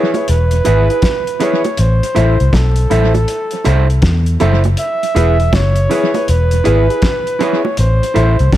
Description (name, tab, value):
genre	roots reggae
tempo	80 BPM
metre	4/4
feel	swing 64% on 16ths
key	E major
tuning	A4 = 440 Hz
part	warm flugelhorn	melody	0.0-8.6 s	A4 to E5	-18 LUFS	right 1 dB	tape echo
part	mellow electric guitar	accompaniment	0.0-8.4 s	E4 to E5	-20 LUFS	right 3 dB	tape echo
part	warm upright piano	stabs	0.0-8.3 s	E4 to C5	-22 LUFS	left 4 dB	none
part	cloth-damped thuddy drum kit	drums	0.1-8.6 s	hi-hat, kick drum, snare drum	-18 LUFS	equal	tape echo
part	bongos	percussion	0.1-8.6 s	none	-23 LUFS	right 6 dB	none
part	vintage muted fingered electric bass	bass	0.3-8.6 s	E1 to E2	-12 LUFS	equal	none
room	studio ambience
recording	none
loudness	-11 LUFS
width	side -13 dB against mid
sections	0.0-8.6 A section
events	none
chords	0.0 E; 1.8 Am; 4.8 E; 7.8 Am